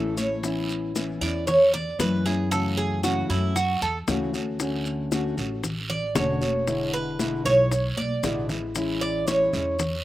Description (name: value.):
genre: latin, Cuban son and guajira.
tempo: 115 BPM.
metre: 4/4.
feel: straight.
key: A major.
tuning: A4 = 440 Hz.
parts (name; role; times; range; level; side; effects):
nylon-string guitar; accompaniment; 0.0-9.8 s; B2 to F#4; -28 LUFS; left 2 dB; none.
Cuban tres; arpeggios; 0.0-10.0 s; E4 to D5; -24 LUFS; right 2 dB; none.
upright bass; bass; 0.0-10.0 s; E1 to F#2; -30 LUFS; equal; none.
bongos; percussion; 0.2-10.0 s; none; -29 LUFS; left 6 dB; none.
congas; percussion; 0.2-10.0 s; none; -34 LUFS; left 1 dB; none.
guiro; percussion; 0.2-10.0 s; none; -37 LUFS; right 4 dB; none.
maracas; percussion; 0.2-10.0 s; none; -37 LUFS; left 4 dB; none.
room: little or no reverb.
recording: recorded outdoors, with no room sound.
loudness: -22 LUFS.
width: side -15 dB against mid.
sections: 0.4-10.0 A section.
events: Cuban tres solo 0.4-10.0; drum fill 8.0-8.8.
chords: 0.4 Aadd9; 2.5 F#m7; 4.6 Dmaj7; 6.7 E7; 8.8 Amaj7.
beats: | 0.44 0.96 1.48 2.00 | 2.52 3.04 3.56 4.08 | 4.60 5.12 5.64 6.16 | 6.68 7.20 7.72 8.24 | 8.76 9.28 9.80.